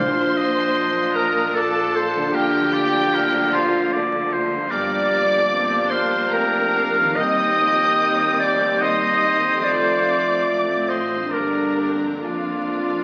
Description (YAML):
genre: classical, slow romantic movement for symphony orchestra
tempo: 66-77 BPM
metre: 3/4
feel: rubato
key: unclear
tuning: A4 = 440 Hz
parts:
  - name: rich chamber violin section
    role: melody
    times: 0.0-13.0 s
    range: F5 to Eb6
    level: -31 LUFS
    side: equal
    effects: none
  - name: bright clarinet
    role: second line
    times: 0.0-13.0 s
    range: F4 to Eb5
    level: -24 LUFS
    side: equal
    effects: none
  - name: clear oboe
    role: second line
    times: 0.0-13.0 s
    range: Bb4 to G5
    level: -26 LUFS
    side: equal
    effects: none
  - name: clear symphonic violin section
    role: second line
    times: 0.0-13.0 s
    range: F4 to Eb5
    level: -31 LUFS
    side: equal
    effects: none
  - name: bright symphonic viola section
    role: accompaniment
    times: 0.0-13.0 s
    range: Eb3 to G4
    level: -35 LUFS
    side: equal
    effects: none
  - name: clear French horn section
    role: sustained chords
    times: 0.0-13.0 s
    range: C4 to G4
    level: -31 LUFS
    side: equal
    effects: none
  - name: warm trombone section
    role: sustained chords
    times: 0.0-13.0 s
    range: D3 to Bb3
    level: -34 LUFS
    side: equal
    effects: none
  - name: concert harp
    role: arpeggios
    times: 0.0-13.0 s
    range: F2 to Bb4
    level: -30 LUFS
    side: equal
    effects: none
  - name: rich symphonic cello section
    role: bass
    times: 0.0-13.0 s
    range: Eb2 to D3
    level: -36 LUFS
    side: equal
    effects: none
  - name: rich symphonic double bass section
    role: bass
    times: 0.0-13.0 s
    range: F1 to Eb2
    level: -37 LUFS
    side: equal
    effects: none
  - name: timpani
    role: percussion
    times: 0.0-1.1 s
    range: Bb2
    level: -36 LUFS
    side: equal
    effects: none
room: wet stone room reverb, RT60 1.0 s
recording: very old 78 rpm record, vinyl crackle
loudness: -20 LUFS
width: mono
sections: 0.0-13.0 A section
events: none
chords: 0.0 Bb; 2.3 Bb/D; 4.7 Gm7; 7.2 Cm/Eb; 9.7 F; 11.3 Gm; 12.2 Bb/F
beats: 0.76 1.55 | 2.34 3.14 3.93 | 4.71 5.51 6.32 | 7.18 8.00 8.82 | 9.65 10.48 11.33 | 12.22